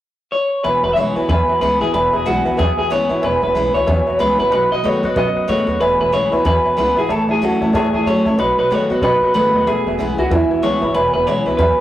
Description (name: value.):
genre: rockabilly.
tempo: 186 BPM.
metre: 4/4.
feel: swing 60% on 8ths.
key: E major.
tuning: A4 = 440 Hz.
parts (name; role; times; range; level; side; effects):
electric guitar through a small old amp; melody; 0.3-11.8 s; E4 to E5; -16 LUFS; equal; spring reverb.
honky-tonk upright piano; accompaniment; 0.6-11.7 s; B4 to B5; -23 LUFS; equal; none.
picked steel-string acoustic guitar; accompaniment; 0.6-11.8 s; E2 to F#4; -24 LUFS; left 2 dB; none.
electric guitar through a small old amp; riff; 0.6-11.8 s; E2 to G#3; -23 LUFS; right 1 dB; spring reverb.
upright bass; bass; 0.6-11.8 s; E1 to B2; -23 LUFS; equal; none.
room: wet small room reverb, RT60 0.5 s.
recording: rough rehearsal-room recording, warm saturation.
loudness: -14 LUFS.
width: side -13 dB against mid.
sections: 0.6-11.0 A section.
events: none.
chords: 0.0 N.C.; 0.6 E; 4.5 B7; 5.8 E; 7.1 A; 8.4 B7; 9.7 E.